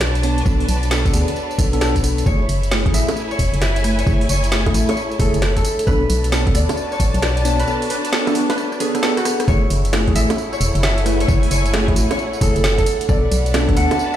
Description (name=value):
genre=UK garage, two-step garage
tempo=133 BPM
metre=4/4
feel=swing 64% on 16ths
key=F# minor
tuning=A4 = 440 Hz
part: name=soft string machine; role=sustained chords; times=0.0-14.2 s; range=D4 to C#5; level=-30 LUFS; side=left 1 dB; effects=ensemble chorus, sidechain pumping
part: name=organ-like FM bass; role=bass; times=0.0-13.9 s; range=E1 to D2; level=-19 LUFS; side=equal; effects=none
part: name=garage drum kit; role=drums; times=0.0-14.2 s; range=bongos, hi-hat, rim click, snare drum, tambourine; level=-24 LUFS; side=right 2 dB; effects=overdrive, small room ambience
part: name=warm symphonic string section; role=texture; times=0.0-14.2 s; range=A3 to A5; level=-27 LUFS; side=left 1 dB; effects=sidechain pumping
part: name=bell-like tine electric piano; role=stabs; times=0.2-13.9 s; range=A3 to C#5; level=-23 LUFS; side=equal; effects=analog chorus, ping-pong delay
part: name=electronic kick drum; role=drums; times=0.5-13.8 s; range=none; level=-19 LUFS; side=equal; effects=overdrive, small room ambience
part: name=concert harp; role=melody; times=2.3-14.2 s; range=F#4 to F#5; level=-24 LUFS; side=left 1 dB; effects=ping-pong delay
room=light reverb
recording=played on a big sound system in a bare room, stone room reverb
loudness=-15 LUFS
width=side -11 dB against mid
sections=0.0-9.5 A section; 9.5-14.2 B section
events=drum fill 8.6-9.5; drop 9.5-14.2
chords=0.0 Bm7; 2.3 F#m9; 5.6 Bm7; 9.5 F#m9; 12.9 Bm7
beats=0.01 | 0.46 0.91 1.36 1.81 | 2.26 2.71 3.16 3.62 | 4.07 4.52 4.97 5.42 | 5.87 6.32 6.77 7.22 | 7.68 8.13 8.58 9.03 | 9.48 9.93 10.38 10.83 | 11.29 11.74 12.19 12.64 | 13.09 13.54 13.99